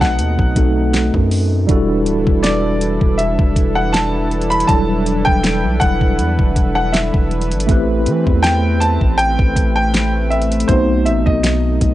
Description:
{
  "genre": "contemporary R&B",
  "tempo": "80 BPM",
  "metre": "4/4",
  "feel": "swing 54% on 16ths",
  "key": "unclear",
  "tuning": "A4 = 440 Hz",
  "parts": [
    { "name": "clear concert grand piano", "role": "melody", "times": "0.0-11.9 s", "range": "C5 to B5", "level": "-20 LUFS", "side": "equal", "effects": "tape echo" },
    { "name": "tine electric piano", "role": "accompaniment", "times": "0.0-11.9 s", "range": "F#3 to B4", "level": "-20 LUFS", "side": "equal", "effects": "medium stereo tremolo" },
    { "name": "warm analog pad", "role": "sustained chords", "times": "0.0-11.9 s", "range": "B2 to B4", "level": "-23 LUFS", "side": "equal", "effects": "chorus" },
    { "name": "long sustained 808-style bass", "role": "bass", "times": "0.0-11.9 s", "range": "D1 to E3", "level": "-19 LUFS", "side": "equal", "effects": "none" },
    { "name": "smooth R&B drum kit", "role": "drums", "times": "0.0-11.9 s", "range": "hi-hat, kick drum, snare drum", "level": "-17 LUFS", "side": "equal", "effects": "none" }
  ],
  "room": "little or no reverb",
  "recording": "dry, gritty hardware recording, nothing above 10.4 kHz",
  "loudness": "-13 LUFS",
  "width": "side -14 dB against mid",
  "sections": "0.0-11.9 A section",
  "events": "none",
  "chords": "0.0 B7b9; 1.7 Em11; 7.7 Am9; 10.7 B7b9",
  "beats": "0.19 0.94 | 1.69 2.44 3.19 3.94 | 4.69 5.44 6.19 6.94 | 7.69 8.44 9.19 9.94 | 10.69 11.44"
}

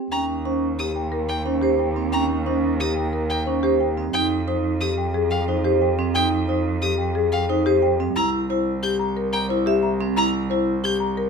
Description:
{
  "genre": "classical, minimalist pattern music",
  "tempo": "179 BPM",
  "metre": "6/4",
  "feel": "straight",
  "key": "unclear",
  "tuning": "A4 = 443 Hz",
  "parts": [
    { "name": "marimba with medium mallets", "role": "melody", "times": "0.1-11.3 s", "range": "G4 to Bb5", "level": "-24 LUFS", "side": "left 8 dB", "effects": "none" },
    { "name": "clear violin", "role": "arpeggios", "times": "0.1-11.0 s", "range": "F5 to G6", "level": "-27 LUFS", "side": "right 1 dB", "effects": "none" },
    { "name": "vibraphone with medium hard mallets", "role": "arpeggios", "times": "0.1-10.7 s", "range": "C4 to E5", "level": "-23 LUFS", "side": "right 4 dB", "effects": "none" },
    { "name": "clear cello", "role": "bass", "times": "0.1-11.3 s", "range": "C2 to F2", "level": "-26 LUFS", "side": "right 4 dB", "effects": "none" }
  ],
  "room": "moderate large studio reverb, RT60 1.0 s",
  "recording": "minimal, uncompressed stereo recording",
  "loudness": "-19 LUFS",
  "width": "side -5 dB against mid",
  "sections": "0.1-11.3 A section",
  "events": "none",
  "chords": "0.1 Eb7; 4.1 F7(no3); 8.2 C7",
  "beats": "| 0.12 0.45 0.79 1.12 1.46 1.79 | 2.13 2.46 2.80 3.13 3.47 3.81 | 4.14 4.48 4.81 5.15 5.48 5.82 | 6.15 6.49 6.82 7.16 7.49 7.83 | 8.16 8.50 8.83 9.17 9.50 9.84 | 10.17 10.51 10.85 11.18"
}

